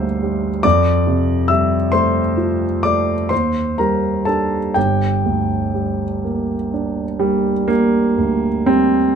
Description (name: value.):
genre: classical, impressionist solo piano.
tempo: 40-48 BPM (dotted quarters).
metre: 9/8.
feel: rubato.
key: G minor.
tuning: A4 = 441 Hz.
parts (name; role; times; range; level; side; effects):
warm concert grand piano; solo; 0.0-9.2 s; G1 to G6; -15 LUFS; right 1 dB; none.
room: light reverb.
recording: close, detailed microphones.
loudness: -15 LUFS.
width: side -7 dB against mid.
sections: 0.0-9.2 A section.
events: none.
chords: 0.0 Gm; 0.6 Fadd9; 3.3 Ebmaj7; 4.8 Gm.